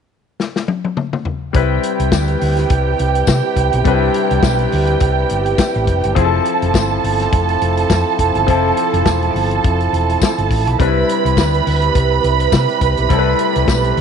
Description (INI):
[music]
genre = disco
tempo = 104 BPM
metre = 4/4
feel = swing 56% on 16ths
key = C major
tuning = A4 = 439 Hz
[part]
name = warm soul drum kit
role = drums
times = 0.4-14.0 s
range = hi-hat, kick drum, snare drum, toms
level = -18 LUFS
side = left 3 dB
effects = none
[part]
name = bright concert grand piano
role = accompaniment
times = 1.5-14.0 s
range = F3 to B4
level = -21 LUFS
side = left 12 dB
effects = none
[part]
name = warm French horn section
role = sustained chords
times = 1.5-14.0 s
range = C3 to B4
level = -21 LUFS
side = right 1 dB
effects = none
[part]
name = hollow-body short-scale fingered electric bass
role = bass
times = 1.5-14.0 s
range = E1 to C3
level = -18 LUFS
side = equal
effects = none
[part]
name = dark studio string section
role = second line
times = 1.6-14.0 s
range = G4 to B5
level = -19 LUFS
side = right 13 dB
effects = none
[part]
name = tambourine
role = percussion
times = 2.1-13.8 s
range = none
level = -30 LUFS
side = left 17 dB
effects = none
[sound]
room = light reverb, small room ambience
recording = 1960s-style stereo with parts hard left and right, nothing above 11.0 kHz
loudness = -13 LUFS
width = side -7 dB against mid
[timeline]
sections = 0.0-1.5 A section; 1.5-14.0 B section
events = drum fill 0.4-1.5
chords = 0.0 N.C.; 1.5 Cmaj7; 6.2 Fmaj7; 10.8 Cmaj7